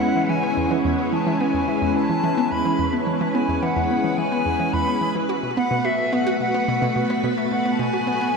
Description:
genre	ambient, sequencer-driven space music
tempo	108 BPM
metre	4/4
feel	straight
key	unclear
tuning	A4 = 440 Hz
part	bright reedy silver concert flute	melody	0.0-8.4 s	E5 to B5	-25 LUFS	left 1 dB	analog delay
part	string machine, full ensemble	sustained chords	0.0-8.4 s	G#3 to B4	-22 LUFS	equal	ensemble chorus
part	analog pluck	riff	0.0-8.4 s	E2 to F#4	-25 LUFS	right 1 dB	chorus, analog delay
room	wet spring reverb, RT60 2.8 s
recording	echo-heavy mix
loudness	-19 LUFS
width	side -4 dB against mid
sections	0.0-8.4 A section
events	none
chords	0.0 E6; 5.3 B7(no3)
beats	0.29 | 0.85 1.40 1.96 2.51 | 3.07 3.62 4.18 4.74 | 5.29 5.85 6.40 6.96 | 7.51 8.07

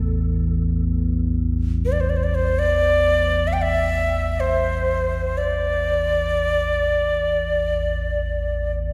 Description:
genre	world meditative, free-time meditation music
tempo	free time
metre	none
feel	none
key	unclear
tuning	A4 = 440 Hz
part	deep rumbling drone	drone	0.0-8.9 s	A1 to E2	-25 LUFS	equal	built-in reverb, lush chorus
part	bronze singing bowl	texture	0.0-4.2 s	E3	-35 LUFS	equal	none
part	breathy Native American-style cedar flute	melody	1.9-8.7 s	C5 to G5	-23 LUFS	equal	analog delay
room	wet plate reverb, RT60 3.4 s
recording	dreamy mix soaked in reverb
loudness	-21 LUFS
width	mono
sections	0.0-8.9 A section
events	none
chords	none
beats	free time

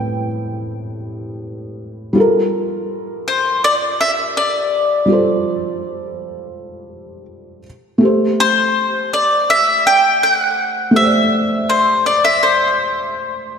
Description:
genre	R&B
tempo	82 BPM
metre	4/4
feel	straight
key	A minor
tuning	A4 = 441 Hz
part	mandolin	melody	0.0-13.5 s	C5 to G5	-14 LUFS	left 1 dB	none
part	felt-muted upright piano	accompaniment	0.0-13.6 s	A2 to D5	-18 LUFS	equal	lush chorus
room	wet lush hall reverb, RT60 2.8 s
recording	dreamy mix soaked in reverb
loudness	-13 LUFS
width	side -6 dB against mid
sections	0.0-8.0 A section; 8.0-13.6 B section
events	none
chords	0.0 Am9; 2.2 Gm9; 7.7 N.C.; 8.0 Am7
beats	0.70 1.43 | 2.16 2.89 3.63 4.36 | 5.09 5.82 6.55 7.28 | 8.02 8.75 9.48 10.21 | 10.94 11.68 12.41 13.14

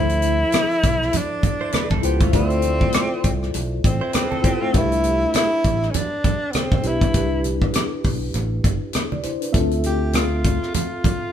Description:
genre	lush 1970s-style soul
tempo	100 BPM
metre	4/4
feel	swing 58% on 16ths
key	unclear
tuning	A4 = 439 Hz
part	breathy tenor saxophone	melody	0.0-11.3 s	B3 to G4	-23 LUFS	equal	none
part	mellow tine electric piano	accompaniment	0.0-11.3 s	F3 to E5	-26 LUFS	left 3 dB	medium stereo tremolo
part	fingered electric bass	bass	0.0-10.6 s	G1 to D2	-24 LUFS	right 1 dB	none
part	tight funk drum kit	drums	0.1-11.2 s	hi-hat, kick drum, rim click	-21 LUFS	equal	none
part	congas	percussion	0.5-11.2 s	none	-28 LUFS	right 5 dB	none
part	direct-recorded clean electric guitar	riff	1.6-5.5 s	A3 to C5	-29 LUFS	right 5 dB	spring reverb
room	light reverb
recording	band playing live in one room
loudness	-18 LUFS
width	side -9 dB against mid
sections	0.0-11.3 A section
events	none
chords	0.0 Dm7; 4.7 Cmaj7; 9.5 Dm7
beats	0.53 1.13 1.73 | 2.33 2.94 3.54 4.14 | 4.74 5.34 5.94 6.54 | 7.14 7.74 8.34 8.94 | 9.54 10.14 10.74

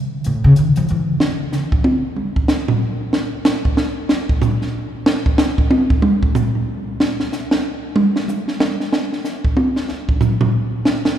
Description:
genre	modal jazz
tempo	186 BPM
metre	3/4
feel	swing 61% on 8ths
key	unclear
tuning	A4 = 440 Hz
part	compact cocktail drum kit	drums	0.2-11.1 s	hi-hat, kick drum, snare drum, toms	-16 LUFS	right 1 dB	none
part	upright bass	bass	0.3-1.1 s	A2 to E#3	-16 LUFS	left 1 dB	none
room	wet church reverb, RT60 4.1 s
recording	recorded in a church or concert hall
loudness	-15 LUFS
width	side -10 dB against mid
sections	0.0-1.2 A section; 1.2-8.9 A section; 8.9-11.2 A section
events	upright bass solo 0.0-1.2; drum solo 1.2-11.2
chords	none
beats	| 0.25 0.57 0.89 | 1.21 1.53 1.85 | 2.17 2.50 2.82 | 3.14 3.46 3.78 | 4.11 4.43 4.75 | 5.07 5.39 5.71 | 6.04 6.36 6.68 | 7.00 7.32 7.65 | 7.97 8.29 8.61 | 8.93 9.26 9.58 | 9.90 10.22 10.55 | 10.87

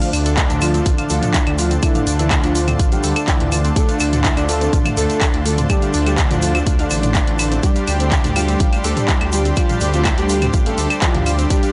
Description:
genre	melodic techno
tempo	124 BPM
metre	4/4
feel	straight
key	D minor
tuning	A4 = 440 Hz
part	expressive portamento lead	melody	0.0-11.7 s	D4 to A4	-28 LUFS	equal	subtle chorus, sidechain pumping, analog delay
part	big bright polysynth	second line	0.0-11.7 s	D3 to A3	-30 LUFS	equal	subtle chorus, sidechain pumping, analog delay
part	lush unison pad	sustained chords	0.0-11.7 s	F4 to C6	-32 LUFS	equal	chorus, sidechain pumping
part	analog pluck	arpeggios	0.0-11.7 s	C4 to F6	-31 LUFS	equal	chorus, sidechain pumping, analog delay
part	brassy analog pad	stabs	0.0-11.7 s	D3 to G4	-25 LUFS	equal	chorus, sidechain pumping, analog delay
part	punchy analog drum machine	drums	0.0-11.7 s	claves, handclaps, hi-hat, toms	-25 LUFS	equal	sidechain pumping on hats, sidechain pumping on toms, sidechain pumping on perc, sidechain pumping on cymbals
part	tube shaker	percussion	0.0-11.7 s	none	-33 LUFS	equal	none
part	dark detuned saw bass	bass	0.1-11.5 s	A1 to D2	-22 LUFS	equal	sidechain pumping
part	electronic kick drum	drums	0.4-11.6 s	none	-20 LUFS	equal	none
room	little or no reverb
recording	dry, gritty hardware recording, transformer saturation, nothing above 10.6 kHz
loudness	-17 LUFS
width	mono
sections	0.0-11.7 A section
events	none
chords	0.0 Dm7; 7.6 Gsus4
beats	0.38 0.86 1.34 | 1.83 2.31 2.79 3.28 | 3.76 4.25 4.73 5.21 | 5.70 6.18 6.67 7.15 | 7.63 8.12 8.60 9.09 | 9.57 10.05 10.54 11.02 | 11.50

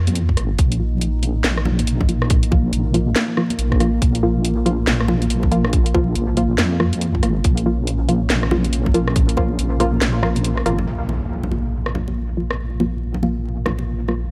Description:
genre	deep dubstep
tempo	140 BPM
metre	4/4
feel	swing 61% on 16ths, half-time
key	Bb minor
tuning	A4 = 439 Hz
part	dark analog pad	sustained chords	0.0-14.3 s	Bb3 to F4	-29 LUFS	equal	chorus
part	filtered dub chord stab	stabs	0.0-14.2 s	F3 to F4	-26 LUFS	equal	chorus, dub echo
part	deep soft wobble bass	bass	0.0-14.3 s	Ab1 to F2	-23 LUFS	equal	chorus
part	garage drum kit	drums	0.1-14.2 s	hi-hat, rim click, snare drum	-25 LUFS	equal	none
part	congas and bongos	percussion	0.1-14.2 s	none	-31 LUFS	equal	dub echo
part	electronic kick drum	drums	0.3-9.5 s	none	-20 LUFS	equal	none
part	impact	sound effects	10.9-12.6 s	none	-31 LUFS	equal	none
room	light reverb, digital ambience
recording	vinyl crackle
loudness	-19 LUFS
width	mono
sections	0.0-10.9 A section; 10.9-14.3 B section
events	filter sweep on synth stab 0.0-10.9, 10.9-14.3; kick drops out 10.0-10.9; impact 10.9-12.6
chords	0.0 Bb5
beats	0.16 | 0.59 1.02 1.45 1.87 | 2.30 2.73 3.16 3.59 | 4.02 4.45 4.87 5.30 | 5.73 6.16 6.59 7.02 | 7.45 7.87 8.30 8.73 | 9.16 9.59 10.02 10.45 | 10.87 11.30 11.73 12.16 | 12.59 13.02 13.45 13.87 | 14.30

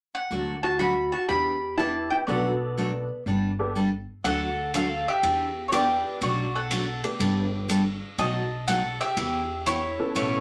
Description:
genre	country, western swing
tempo	122 BPM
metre	4/4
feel	swing 67% on 8ths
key	D major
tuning	A4 = 438 Hz
part	mandolin	melody	0.1-10.4 s	E4 to B5	-29 LUFS	equal	none
part	picked steel-string acoustic guitar	accompaniment	0.3-10.4 s	B2 to A4	-30 LUFS	equal	none
part	upright bass	bass	0.3-10.4 s	G1 to E2	-36 LUFS	equal	none
part	vintage hollow-body jazz guitar	second line	0.6-3.2 s	B3 to G4	-31 LUFS	equal	none
part	honky-tonk upright piano	accompaniment	1.8-10.4 s	A3 to A4	-34 LUFS	equal	none
part	swinging big-band drum kit	drums	4.2-10.3 s	hi-hat, ride cymbal	-37 LUFS	equal	none
room	wet studio ambience, RT60 0.5 s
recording	none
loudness	-26 LUFS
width	mono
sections	0.3-4.3 A section; 4.3-10.4 B section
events	none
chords	0.3 D; 1.3 Em7; 2.3 Bm7; 3.3 Gadd9; 4.3 D; 5.2 Em7; 6.2 Bm7; 7.2 Gadd9; 8.2 B7; 9.2 Em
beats	| 0.31 0.81 1.30 1.79 | 2.28 2.77 3.27 3.76 | 4.25 4.74 5.24 5.73 | 6.22 6.71 7.20 7.70 | 8.19 8.68 9.17 9.66 | 10.16

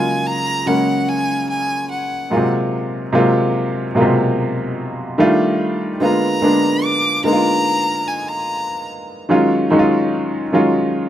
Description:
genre	R&B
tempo	73 BPM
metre	4/4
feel	straight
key	unclear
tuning	A4 = 441 Hz
part	clear violin	melody	0.0-8.9 s	F#5 to D6	-20 LUFS	equal	digital delay
part	clear concert grand piano	accompaniment	0.0-11.1 s	A#2 to E#4	-16 LUFS	equal	none
room	light reverb, small room ambience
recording	rough home demo mix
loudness	-15 LUFS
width	side -11 dB against mid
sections	0.0-11.1 A section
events	none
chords	0.0 F#maj9; 2.3 G#13; 5.2 F13; 6.0 A#7b9; 9.3 D#m11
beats	0.25 1.07 1.89 | 2.72 3.54 4.36 5.18 | 6.00 6.83 7.65 8.47 | 9.29 10.11 10.94

